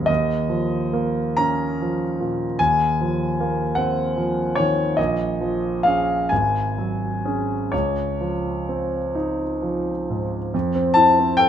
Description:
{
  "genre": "classical, impressionist solo piano",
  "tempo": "42-51 BPM (dotted quarters)",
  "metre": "6/8",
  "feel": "rubato",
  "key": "Db major",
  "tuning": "A4 = 442 Hz",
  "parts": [
    { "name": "clear concert grand piano", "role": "solo", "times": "0.0-11.5 s", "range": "Ab1 to Bb5", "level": "-19 LUFS", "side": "equal", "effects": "none" }
  ],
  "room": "wet large studio reverb, RT60 1.4 s",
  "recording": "minimal, uncompressed stereo recording",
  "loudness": "-19 LUFS",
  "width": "side -9 dB against mid",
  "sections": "0.0-10.5 A section",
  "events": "none",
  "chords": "0.1 Ebsus2; 2.6 Ab13/Eb; 5.0 Bbm7; 6.3 Ab7sus4; 7.7 Dbmaj9; 10.5 Fmaj7"
}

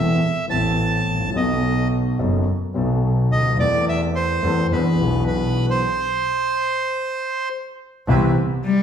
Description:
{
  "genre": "tango",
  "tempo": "107 BPM",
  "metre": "4/4",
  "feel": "rubato",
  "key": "A harmonic minor",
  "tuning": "A4 = 441 Hz",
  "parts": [
    { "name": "bandoneon", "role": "melody", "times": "0.0-7.5 s", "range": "B4 to A5", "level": "-22 LUFS", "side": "right 2 dB", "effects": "none" },
    { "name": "warm concert grand piano", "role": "accompaniment", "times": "0.0-8.3 s", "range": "E1 to A4", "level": "-20 LUFS", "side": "left 1 dB", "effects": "none" },
    { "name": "clear double bass", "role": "bass", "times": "0.0-8.3 s", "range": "E1 to E2", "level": "-26 LUFS", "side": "right 1 dB", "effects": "none" },
    { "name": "bandoneon", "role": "stabs", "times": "8.1-8.3 s", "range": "C4 to B4", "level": "-29 LUFS", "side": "right 3 dB", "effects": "none" },
    { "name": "warm cello", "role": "second line", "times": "8.6-8.8 s", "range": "G3", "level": "-16 LUFS", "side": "left 3 dB", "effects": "none" }
  ],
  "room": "wet large studio reverb, RT60 1.3 s",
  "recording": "band playing live in one room",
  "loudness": "-18 LUFS",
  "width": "side -8 dB against mid",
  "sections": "0.0-8.1 A section",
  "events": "stop 5.8-8.1",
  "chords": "0.0 Amadd9; 1.3 B7; 3.6 Am/E; 4.7 E7; 5.8 N.C.; 8.1 Cmaj7"
}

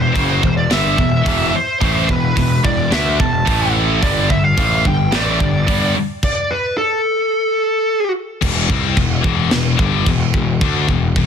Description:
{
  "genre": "heavy metal",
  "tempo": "109 BPM",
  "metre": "4/4",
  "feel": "straight",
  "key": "E minor",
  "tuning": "A4 = 440 Hz",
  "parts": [
    { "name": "high-gain lead guitar", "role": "melody", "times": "0.0-8.1 s", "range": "A4 to A5", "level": "-18 LUFS", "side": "equal", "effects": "distortion" },
    { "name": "scooped high-gain guitar", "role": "riff", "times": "0.0-11.3 s", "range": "E2 to D4", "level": "-19 LUFS", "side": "left 9 dB", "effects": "distortion" },
    { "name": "tight distorted guitar", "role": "riff", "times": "0.0-6.0 s", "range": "E2 to D4", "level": "-21 LUFS", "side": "right 14 dB", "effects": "distortion" },
    { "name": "fuzz picked electric bass", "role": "bass", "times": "0.0-11.3 s", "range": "E1 to D2", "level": "-20 LUFS", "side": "right 1 dB", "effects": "overdrive" },
    { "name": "tight metal drum kit", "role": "drums", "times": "0.2-11.3 s", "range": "crash cymbal, hi-hat, kick drum, snare drum", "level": "-19 LUFS", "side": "equal", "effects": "none" }
  ],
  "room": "studio ambience",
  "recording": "dense, heavily limited modern master",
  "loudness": "-14 LUFS",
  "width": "side -7 dB against mid",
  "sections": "0.0-8.4 A section; 8.4-11.3 B section",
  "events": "stop 6.2-8.4",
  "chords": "0.0 Em; 3.5 A5; 4.0 G5; 7.0 N.C.; 8.4 Em"
}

